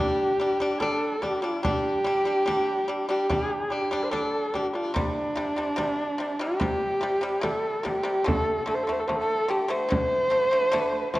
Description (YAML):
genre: mongolian traditional, Mongolian folk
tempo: 72 BPM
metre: 4/4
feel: straight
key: C zhi mode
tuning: A4 = 438 Hz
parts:
  - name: warm horsehead fiddle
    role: melody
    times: 0.0-11.2 s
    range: D4 to C5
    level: -25 LUFS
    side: equal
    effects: none
  - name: pipa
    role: arpeggios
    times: 0.0-11.2 s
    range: C3 to D4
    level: -30 LUFS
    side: left 1 dB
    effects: none
  - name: frame drum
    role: percussion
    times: 0.6-11.2 s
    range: none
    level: -32 LUFS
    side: equal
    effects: none
room: wet scoring stage reverb, RT60 2.0 s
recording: worn, warbling old tape, cassette tape, warbly pitch drift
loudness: -23 LUFS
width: side -17 dB against mid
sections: 0.0-11.2 A section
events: none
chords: 0.0 G5; 5.0 C5; 8.3 D5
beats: 0.81 | 1.64 2.47 3.30 4.13 | 4.96 5.78 6.61 7.44 | 8.26 9.09 9.91 10.73